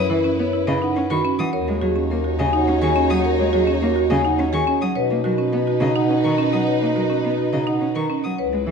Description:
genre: classical, minimalist pattern music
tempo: 105 BPM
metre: 3/4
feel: straight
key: B major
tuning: A4 = 439 Hz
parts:
  - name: clear French horn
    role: second line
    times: 0.0-8.7 s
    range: D#4 to B4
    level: -26 LUFS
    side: right 4 dB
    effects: none
  - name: clear cello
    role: accompaniment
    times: 0.0-8.7 s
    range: C#3 to C#4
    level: -26 LUFS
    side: equal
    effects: none
  - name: rich studio violin section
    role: sustained chords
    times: 0.0-8.7 s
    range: D#4 to C#5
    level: -28 LUFS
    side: left 4 dB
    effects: none
  - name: warm violin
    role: arpeggios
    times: 0.0-8.3 s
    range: D#5 to D#6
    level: -34 LUFS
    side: left 3 dB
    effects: none
  - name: mellow bass clarinet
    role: bass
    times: 0.0-8.7 s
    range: C#2 to B2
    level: -25 LUFS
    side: left 2 dB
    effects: none
  - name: vibraphone with medium hard mallets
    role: melody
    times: 0.1-8.7 s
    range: G#4 to B5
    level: -24 LUFS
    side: left 7 dB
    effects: none
  - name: marimba with hard mallets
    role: arpeggios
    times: 0.1-8.7 s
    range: C#4 to C#5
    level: -24 LUFS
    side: right 8 dB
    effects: none
room: moderate scoring stage reverb, RT60 1.7 s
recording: dark, warm production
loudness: -17 LUFS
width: side -6 dB against mid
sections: 0.0-8.7 A section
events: none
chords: 0.0 F#7sus4; 1.5 D#m7; 5.0 Bmaj7

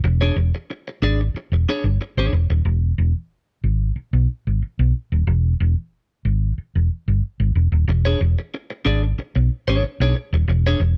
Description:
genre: funk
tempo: 92 BPM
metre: 4/4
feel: straight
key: E mixolydian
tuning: A4 = 440 Hz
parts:
  - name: clean electric guitar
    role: accompaniment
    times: 0.0-2.5, 7.9-10.9 s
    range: D4 to D5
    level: -26 LUFS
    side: equal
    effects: lush chorus
  - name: hollow-body short-scale fingered electric bass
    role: bass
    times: 0.0-10.9 s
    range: D#1 to B1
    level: -20 LUFS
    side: equal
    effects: none
room: little or no reverb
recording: none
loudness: -21 LUFS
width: mono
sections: 0.0-11.0 A section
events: none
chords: 0.0 E6

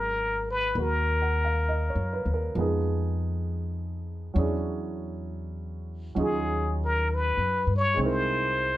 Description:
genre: jazz ballad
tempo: 66 BPM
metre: 4/4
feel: swing 69% on 8ths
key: unclear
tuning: A4 = 440 Hz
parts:
  - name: trumpet with plunger mute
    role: melody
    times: 0.0-8.8 s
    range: Ab4 to Db5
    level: -26 LUFS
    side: left 2 dB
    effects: none
  - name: warm grand piano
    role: accompaniment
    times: 0.0-8.8 s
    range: F3 to Gb5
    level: -32 LUFS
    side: right 3 dB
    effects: none
  - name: upright bass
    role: bass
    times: 0.0-8.8 s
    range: Ab1 to G2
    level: -29 LUFS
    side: left 1 dB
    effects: none
room: light reverb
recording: none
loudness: -25 LUFS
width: side -15 dB against mid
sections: 0.0-8.8 A section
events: muted trumpet solo 0.0-8.8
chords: 0.0 Abm11; 2.6 Fm7b5; 4.4 E13; 6.2 Ebm11; 8.0 C7alt

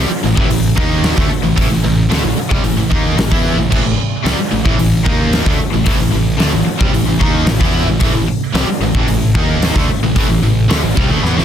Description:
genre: hard rock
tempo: 112 BPM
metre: 4/4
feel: straight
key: unclear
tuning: A4 = 440 Hz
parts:
  - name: cranked stack guitar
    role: riff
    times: 0.0-11.4 s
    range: A2 to E4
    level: -20 LUFS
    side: left 10 dB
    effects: overdrive, phaser
  - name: distorted electric guitar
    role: riff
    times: 0.0-11.4 s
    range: A2 to E4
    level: -20 LUFS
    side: right 10 dB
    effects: overdrive
  - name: high-gain distorted guitar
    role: riff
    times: 0.0-11.4 s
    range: A2 to E4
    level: -22 LUFS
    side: equal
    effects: distortion
  - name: fuzz fingered electric bass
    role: bass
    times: 0.0-11.4 s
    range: A1 to E2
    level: -18 LUFS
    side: equal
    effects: overdrive
  - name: huge arena drum kit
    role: drums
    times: 0.4-11.4 s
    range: crash cymbal, hi-hat, kick drum, snare drum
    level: -15 LUFS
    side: equal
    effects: none
room: light reverb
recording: dense, heavily limited modern master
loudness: -12 LUFS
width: side -9 dB against mid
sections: 0.0-11.4 A section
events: drum fill 11.2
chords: 0.0 Am

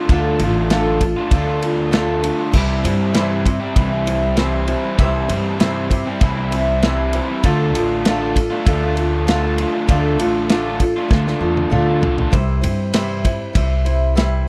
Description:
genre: folk rock and heartland rock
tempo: 98 BPM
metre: 4/4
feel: straight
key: unclear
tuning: A4 = 440 Hz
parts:
  - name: picked old ladder-braced acoustic guitar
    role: accompaniment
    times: 0.0-14.5 s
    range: C3 to C5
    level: -23 LUFS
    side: equal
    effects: none
  - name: raw garage guitar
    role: riff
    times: 0.0-12.3 s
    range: C3 to F4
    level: -25 LUFS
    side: equal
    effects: overdrive
  - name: upright bass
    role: bass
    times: 0.1-14.5 s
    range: A1 to G2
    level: -23 LUFS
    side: equal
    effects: none
  - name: natural country drum kit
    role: drums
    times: 0.1-14.3 s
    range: crash cymbal, kick drum, ride cymbal, snare drum, toms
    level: -21 LUFS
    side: equal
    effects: none
room: little or no reverb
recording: dry, close 1970s-style studio recording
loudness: -18 LUFS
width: mono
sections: 0.0-12.3 A section; 12.3-14.5 A section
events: drum fill 11.1-12.3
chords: 0.0 Dm; 2.5 C; 7.4 Dm; 12.3 C

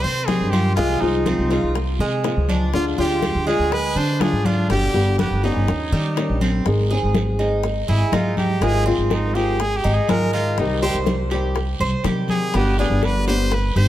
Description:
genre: latin, Cuban son and guajira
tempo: 122 BPM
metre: 4/4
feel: straight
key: unclear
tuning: A4 = 436 Hz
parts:
  - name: brilliant trumpet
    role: melody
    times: 0.0-13.9 s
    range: C4 to C5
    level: -25 LUFS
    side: right 1 dB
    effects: none
  - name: Cuban tres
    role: arpeggios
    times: 0.0-13.9 s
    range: G3 to C5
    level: -26 LUFS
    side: right 2 dB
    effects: none
  - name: upright bass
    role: bass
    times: 0.0-13.9 s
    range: G1 to Eb3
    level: -21 LUFS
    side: equal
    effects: none
  - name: congas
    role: percussion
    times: 0.0-13.9 s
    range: none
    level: -26 LUFS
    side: left 1 dB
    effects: none
  - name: flamenco guitar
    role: accompaniment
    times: 0.3-13.6 s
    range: B2 to Ab4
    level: -25 LUFS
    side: left 2 dB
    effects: none
  - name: bongos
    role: percussion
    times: 0.3-13.9 s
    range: none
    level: -30 LUFS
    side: left 6 dB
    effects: none
  - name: guiro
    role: percussion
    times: 0.3-13.9 s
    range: none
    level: -36 LUFS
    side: right 5 dB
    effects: none
room: moderate plate reverb, RT60 2.8 s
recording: heard from further back in the room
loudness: -17 LUFS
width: side -13 dB against mid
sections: 0.0-6.7 A section; 6.7-13.9 B section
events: trumpet solo 6.7-13.9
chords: 0.0 Cm; 0.8 Fm/C; 2.7 Ddim; 4.7 G; 5.7 Eb7; 6.7 Ab; 8.6 Fm7/Ab; 10.6 Cm; 12.5 G

